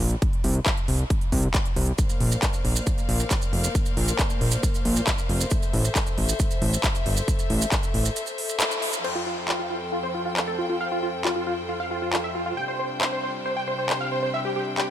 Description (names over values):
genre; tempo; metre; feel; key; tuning
uplifting trance; 136 BPM; 4/4; straight; F major; A4 = 440 Hz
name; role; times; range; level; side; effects
fat analog bass; bass; 0.0-8.1 s; F1 to C2; -23 LUFS; equal; sidechain pumping
big-room dance drum kit; drums; 0.0-14.9 s; crash cymbal, handclaps, hi-hat; -29 LUFS; equal; none
electronic kick drum; drums; 0.2-7.8 s; none; -24 LUFS; equal; none
rich chamber string section; sustained chords; 2.0-14.9 s; F2 to G5; -31 LUFS; left 2 dB; sidechain pumping
maracas; percussion; 2.0-9.0 s; none; -31 LUFS; right 6 dB; none
big supersaw lead; melody; 9.0-14.8 s; F4 to G5; -28 LUFS; right 1 dB; sidechain pumping, low-pass filter, tape echo
plucky unison lead; second line; 9.0-14.8 s; F4 to G5; -32 LUFS; equal; sidechain pumping, tape echo
room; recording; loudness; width
light reverb, digital ambience; none; -22 LUFS; side -11 dB against mid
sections
0.0-9.0 A section; 9.0-14.9 B section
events
break 8.2-9.0; band accent 8.6; filter sweep on supersaw synth 9.0-14.9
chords
0.0 Bbsus2; 2.0 Bbadd9; 5.5 Am; 9.0 Fadd9; 12.6 Csus2